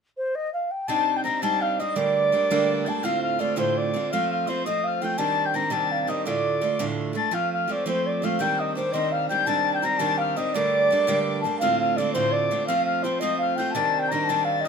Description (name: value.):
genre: celtic folk.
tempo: 112 BPM (dotted quarters).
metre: 6/8.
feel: straight.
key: C dorian.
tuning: A4 = 439 Hz.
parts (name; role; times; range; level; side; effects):
mellow baroque flute; melody; 0.2-14.7 s; C5 to Bb5; -24 LUFS; equal; none.
wooden whistle; second line; 0.9-14.7 s; C6 to Bb6; -29 LUFS; left 6 dB; none.
picked steel-string acoustic guitar; accompaniment; 0.9-14.7 s; D2 to F4; -26 LUFS; right 3 dB; none.
room: light reverb.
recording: minimal, uncompressed stereo recording.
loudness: -22 LUFS.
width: side -6 dB against mid.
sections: 0.9-9.5 A section; 9.5-14.7 A section.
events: none.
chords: 0.0 N.C.; 0.9 Cmadd9; 2.0 Gmadd9; 3.0 Dm7; 4.1 F; 5.2 Cmadd9; 6.3 Dm; 7.3 F; 8.4 Cmadd9; 10.5 Gmadd9; 11.6 Dm7; 12.7 F; 13.8 Cmadd9.